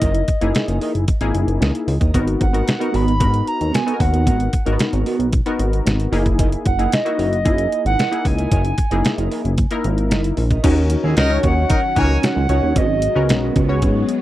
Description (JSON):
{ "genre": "early-eighties boogie funk", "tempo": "113 BPM", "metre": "4/4", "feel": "straight", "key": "G# minor", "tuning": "A4 = 440 Hz", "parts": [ { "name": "hollow clarinet-like synth lead", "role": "melody", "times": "0.0-13.6 s", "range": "D#5 to B5", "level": "-23 LUFS", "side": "right 2 dB", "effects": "chorus, phaser" }, { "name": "funky polysynth comp", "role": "accompaniment", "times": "0.0-14.2 s", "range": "A#3 to C#5", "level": "-23 LUFS", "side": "left 2 dB", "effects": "chorus" }, { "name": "clean electric guitar", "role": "riff", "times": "0.0-14.0 s", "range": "B3 to D#5", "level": "-25 LUFS", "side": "right 6 dB", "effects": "analog chorus" }, { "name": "chorused synth bass", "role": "bass", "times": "0.0-14.0 s", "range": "F#1 to G#2", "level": "-19 LUFS", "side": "equal", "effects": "none" }, { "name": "detuned 8-bit digital drum machine", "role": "drums", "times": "0.0-14.2 s", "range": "crash cymbal, hi-hat, kick drum, snare drum", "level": "-20 LUFS", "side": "equal", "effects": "none" }, { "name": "soft string machine", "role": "sustained chords", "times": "10.6-14.2 s", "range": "D#3 to C#4", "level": "-26 LUFS", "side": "left 2 dB", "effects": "phaser, ensemble chorus" }, { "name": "warm horn section", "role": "second line", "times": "11.0-12.2 s", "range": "F#3 to C#5", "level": "-22 LUFS", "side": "left 1 dB", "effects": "none" } ], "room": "little or no reverb", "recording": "dry, close 1970s-style studio recording", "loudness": "-15 LUFS", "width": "side -14 dB against mid", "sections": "0.0-10.6 A section; 10.6-14.2 B section", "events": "none", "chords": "0.0 F#13; 2.1 G#m9; 6.1 F#13; 10.6 D#m7; 12.8 G#m11", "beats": "| 0.02 0.55 1.08 1.61 | 2.14 2.67 3.20 3.73 | 4.27 4.80 5.33 5.86 | 6.39 6.92 7.45 7.98 | 8.51 9.04 9.58 10.11 | 10.64 11.17 11.70 12.23 | 12.76 13.29 13.82" }